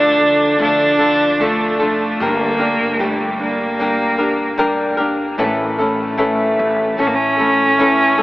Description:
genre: acoustic pop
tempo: 75 BPM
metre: 4/4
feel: straight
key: D harmonic minor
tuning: A4 = 440 Hz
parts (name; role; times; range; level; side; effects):
- rich cello; melody; 0.0-8.2 s; A3 to D4; -16 LUFS; equal; none
- flamenco guitar; accompaniment; 0.0-8.2 s; A2 to Bb4; -18 LUFS; left 1 dB; none
- nylon-string guitar; arpeggios; 0.0-8.2 s; E3 to A4; -26 LUFS; right 1 dB; diffuse ambient delay
- upright bass; bass; 0.0-8.2 s; F1 to D2; -32 LUFS; equal; none
room: wet huge ambient reverb, RT60 7.1 s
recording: dreamy mix soaked in reverb, AM radio sound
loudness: -14 LUFS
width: side -18 dB against mid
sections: 0.0-8.2 A section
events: none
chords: 0.0 Dm; 2.2 Gm; 5.4 A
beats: 0.60 1.40 | 2.20 3.00 3.80 4.60 | 5.40 6.20 7.00 7.79

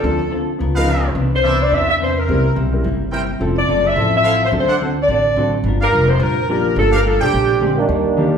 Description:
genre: jazz, big band swing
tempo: 214 BPM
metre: 4/4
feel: swing 58% on 8ths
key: G minor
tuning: A4 = 440 Hz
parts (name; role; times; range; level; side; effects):
- mellow saxophone section; melody; 0.0-7.8 s; G4 to E5; -17 LUFS; equal; none
- vintage hollow-body jazz guitar; accompaniment; 0.0-8.4 s; Bb2 to A#4; -23 LUFS; left 2 dB; none
- warm grand piano; accompaniment; 0.0-8.4 s; D3 to B4; -24 LUFS; equal; none
- upright bass; bass; 0.0-8.4 s; F1 to E2; -20 LUFS; equal; none
- clear trumpet section; stabs; 0.8-7.6 s; D4 to G5; -23 LUFS; right 2 dB; none
- dark trombone section; second line; 7.8-8.4 s; Eb3 to D4; -17 LUFS; right 4 dB; none
room: wet large studio reverb, RT60 1.3 s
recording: band playing live in one room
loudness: -14 LUFS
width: side -7 dB against mid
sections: 0.0-7.9 A section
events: none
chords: 0.0 Dm7; 0.6 C#13; 1.2 Cmaj9; 2.3 C7; 3.4 Fmaj7; 4.5 D7; 5.6 Gm7; 7.3 Bb13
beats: | 0.04 0.32 0.60 0.88 | 1.16 1.44 1.72 2.00 | 2.28 2.56 2.84 3.12 | 3.40 3.68 3.96 4.24 | 4.52 4.80 5.08 5.36 | 5.64 5.93 6.21 6.49 | 6.77 7.05 7.33 7.61 | 7.89 8.17

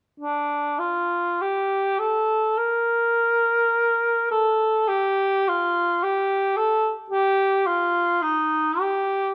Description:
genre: classical, free, expressive piece for unaccompanied cor anglais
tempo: 49-56 BPM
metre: 4/4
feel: rubato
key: unclear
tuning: A4 = 438 Hz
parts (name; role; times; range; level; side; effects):
- mellow cor anglais; solo; 0.2-9.3 s; D4 to Bb4; -22 LUFS; equal; none
room: moderate recital hall reverb, RT60 1.4 s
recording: close, detailed microphones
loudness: -22 LUFS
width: mono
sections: 0.2-9.3 A section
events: none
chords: none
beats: | 0.19 1.40 2.58 3.73 | 4.89 6.02 7.10 8.21 | 9.33

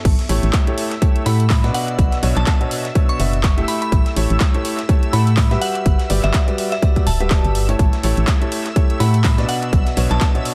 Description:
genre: piano house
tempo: 124 BPM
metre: 4/4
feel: swing 57% on 16ths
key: A mixolydian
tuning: A4 = 440 Hz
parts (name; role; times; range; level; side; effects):
- analog string pad; sustained chords; 0.0-10.5 s; E5 to E6; -34 LUFS; equal; ensemble chorus, sidechain pumping
- clear grand piano; riff; 0.0-10.5 s; B2 to F#5; -26 LUFS; equal; sidechain pumping, tape echo
- organ-like FM bass; bass; 0.1-10.2 s; D1 to A2; -20 LUFS; equal; sidechain pumping
- breakbeat sampler-style drum kit; drums; 0.1-10.5 s; hi-hat, snare drum; -38 LUFS; equal; none
- electronic kick drum; drums; 0.1-10.3 s; none; -18 LUFS; equal; overdrive
- house drum kit; drums; 0.1-10.5 s; crash cymbal, handclaps, hi-hat; -29 LUFS; equal; overdrive, tape echo
- glassy synth bell; melody; 1.3-10.3 s; E5 to C#6; -29 LUFS; equal; chorus, tape echo
room: digital ambience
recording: echo-heavy mix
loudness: -17 LUFS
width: mono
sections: 0.1-10.5 A section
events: drop 0.1-10.5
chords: 0.1 A7; 1.7 Bmadd9; 3.7 A7; 5.6 Gmaj7; 7.8 A7; 9.5 Bmadd9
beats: | 0.05 0.53 1.02 1.50 | 1.99 2.47 2.95 3.44 | 3.92 4.41 4.89 5.37 | 5.86 6.34 6.83 7.31 | 7.79 8.28 8.76 9.24 | 9.73 10.21

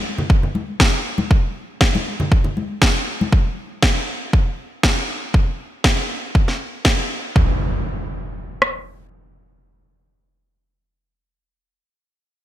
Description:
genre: deep house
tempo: 119 BPM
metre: 4/4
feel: swing 53% on 16ths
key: none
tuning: none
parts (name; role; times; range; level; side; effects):
- congas; percussion; 0.2-3.3 s; none; -24 LUFS; left 2 dB; none
- house drum kit; drums; 0.3-8.7 s; kick drum, rim click; -16 LUFS; equal; none
- electronic snare drum; drums; 0.8-7.0 s; none; -21 LUFS; equal; none
- impact; sound effects; 7.4-11.8 s; none; -24 LUFS; equal; none
room: light reverb, digital ambience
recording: bright 1980s-style digital production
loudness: -17 LUFS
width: side -13 dB against mid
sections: 0.0-7.4 A section; 7.4-11.4 B section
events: none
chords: none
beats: 0.30 0.80 | 1.31 1.81 2.32 2.82 | 3.32 3.83 4.33 4.84 | 5.34 5.84 6.35 6.85 | 7.36 7.86 8.37 8.87 | 9.38 9.88 10.38 10.89

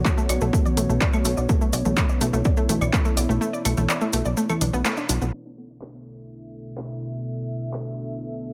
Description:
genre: melodic techno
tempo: 125 BPM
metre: 4/4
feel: straight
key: unclear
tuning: A4 = 440 Hz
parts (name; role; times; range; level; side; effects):
- dark analog pad; sustained chords; 0.0-8.5 s; B2 to E5; -32 LUFS; equal; chorus, sidechain pumping
- analog pluck; arpeggios; 0.0-5.3 s; A3 to D5; -29 LUFS; equal; chorus, sidechain pumping, delay
- plucky analog bass; bass; 0.0-5.3 s; B1; -26 LUFS; equal; sidechain pumping
- deep house drum kit; drums; 0.1-7.8 s; claves, congas, handclaps, hi-hat; -29 LUFS; equal; overdrive
- electronic kick drum; drums; 0.1-3.0 s; none; -24 LUFS; equal; overdrive
- cabasa; percussion; 0.1-5.3 s; none; -36 LUFS; equal; none
room: light reverb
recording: low-pass filter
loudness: -23 LUFS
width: mono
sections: 0.0-5.3 A section; 5.3-8.5 B section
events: kick drops out 3.4-5.3; band accent 4.9; filter sweep 5.3-8.5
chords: 0.0 Bm7; 5.3 Dsus2/B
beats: 0.05 0.53 1.01 | 1.49 1.97 2.45 2.93 | 3.41 3.89 4.37 4.85 | 5.33 5.81 6.29 6.77 | 7.25 7.73 8.21

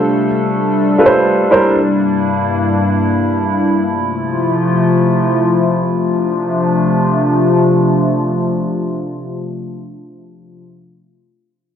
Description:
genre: amapiano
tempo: free time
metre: none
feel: none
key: D minor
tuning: A4 = 440 Hz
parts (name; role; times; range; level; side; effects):
- warm baby grand piano; accompaniment; 0.0-1.8 s; G3 to C5; -13 LUFS; right 2 dB; low-pass filter
- hollow soft pad; sustained chords; 0.0-10.6 s; G2 to A4; -13 LUFS; left 1 dB; chorus, low-pass filter
room: light reverb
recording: dry, gritty hardware recording, cassette tape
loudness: -12 LUFS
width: side -8 dB against mid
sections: 0.0-6.0 A section; 6.0-10.2 B section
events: filter sweep 0.0-6.0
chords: 0.0 G9sus4; 1.5 C9/G; 3.9 Fmaj7; 6.0 Dm7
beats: free time

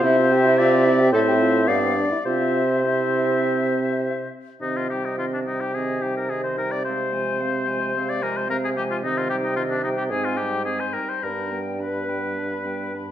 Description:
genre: quick classical-period movement for wind quintet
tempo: 99-113 BPM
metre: 4/4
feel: rubato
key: C major, C minor from 4.6 s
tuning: A4 = 438 Hz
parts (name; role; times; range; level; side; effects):
- bright concert flute; melody; 0.0-13.1 s; Eb5 to B5; -30 LUFS; left 6 dB; none
- warm oboe; second line; 0.0-13.1 s; D4 to D5; -26 LUFS; left 4 dB; none
- mellow French horn; accompaniment; 0.0-13.1 s; Eb3 to A4; -29 LUFS; equal; none
- warm clarinet; accompaniment; 0.0-13.1 s; Ab3 to Eb4; -29 LUFS; right 4 dB; none
- mellow bassoon; bass; 0.0-13.1 s; G2 to C3; -23 LUFS; right 2 dB; none
room: wet recital hall reverb, RT60 1.4 s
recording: dark, warm production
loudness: -20 LUFS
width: side -11 dB against mid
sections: 0.0-4.6 A section; 4.6-13.1 A section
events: none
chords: 0.0 C; 1.1 Am; 1.7 G7; 2.3 C; 4.6 Cm; 6.9 Fm/C; 9.0 Cm; 10.1 Abmaj7; 11.2 G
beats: | 0.04 0.59 1.13 1.68 | 2.26 2.85 3.43 4.02 | 4.62 5.19 5.75 6.30 | 6.86 7.41 7.96 8.50 | 9.04 9.58 10.11 10.66 | 11.23 11.80 12.37 12.94

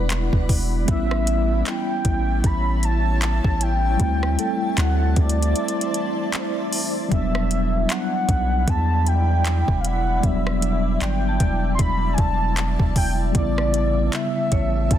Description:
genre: contemporary R&B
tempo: 77 BPM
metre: 4/4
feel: swing 58% on 16ths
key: E minor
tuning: A4 = 442 Hz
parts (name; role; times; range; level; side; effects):
- warm velvety synth lead; melody; 0.0-15.0 s; B4 to C6; -26 LUFS; equal; chorus, tape echo
- mellow tine electric piano; accompaniment; 0.0-15.0 s; C#3 to E4; -26 LUFS; left 1 dB; medium stereo tremolo
- granular cloud pad; sustained chords; 0.0-15.0 s; E4 to B5; -31 LUFS; equal; built-in reverb
- long sustained 808-style bass; bass; 0.0-15.0 s; E1 to E2; -22 LUFS; equal; none
- soft synth bell; texture; 0.0-15.0 s; A4 to A5; -40 LUFS; right 2 dB; none
- smooth R&B drum kit; drums; 0.1-15.0 s; handclaps, hi-hat, kick drum, rim click; -23 LUFS; equal; none
room: digital ambience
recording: dense, heavily limited modern master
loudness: -19 LUFS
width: side -11 dB against mid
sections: 0.0-15.0 A section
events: break 5.6-7.1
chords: 0.0 Em7; 0.9 A7; 4.0 D7sus4; 7.1 Em7; 13.3 A7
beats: 0.10 | 0.88 1.66 2.44 3.22 | 4.00 4.78 5.56 6.34 | 7.12 7.90 8.68 9.45 | 10.23 11.01 11.79 12.57 | 13.35 14.13 14.91

